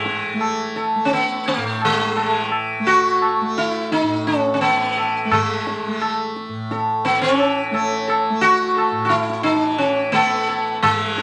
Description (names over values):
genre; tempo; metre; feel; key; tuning
indian classical, Hindustani; 86 BPM; 4/4; straight; A raga yaman; A4 = 440 Hz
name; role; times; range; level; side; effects
sitar; melody; 0.0-11.2 s; G#3 to A4; -21 LUFS; equal; none
tanpura; drone; 0.0-11.2 s; A2 to A3; -27 LUFS; equal; none
tabla; percussion; 0.1-11.2 s; none; -26 LUFS; equal; none
room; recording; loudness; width
moderate studio reverb, RT60 0.5 s; nothing above 10.3 kHz; -19 LUFS; mono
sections
0.0-10.8 A section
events
speeding up 0.0-11.2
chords
none